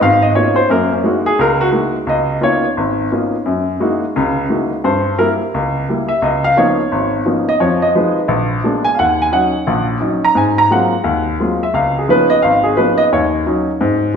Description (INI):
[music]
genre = jazz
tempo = 174 BPM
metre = 4/4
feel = swing 64% on 8ths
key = Db mixolydian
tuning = A4 = 440 Hz
[part]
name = warm baby grand piano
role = solo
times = 0.0-14.2 s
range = Ab1 to Bb5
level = -12 LUFS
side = equal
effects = none
[sound]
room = wet recital hall reverb, RT60 1.4 s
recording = recorded in a church or concert hall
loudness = -13 LUFS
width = side -6 dB against mid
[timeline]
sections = 0.0-14.2 A section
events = grand piano solo 0.0-14.2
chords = 0.0 Db13; 0.7 Gb13; 2.1 Db13; 3.4 Gb13; 4.8 Gdim7; 6.2 Db13; 7.6 Fm7b5; 8.3 Bb7b9; 9.0 Ebm7; 10.3 Ab13; 11.7 Db13; 13.1 Ebm7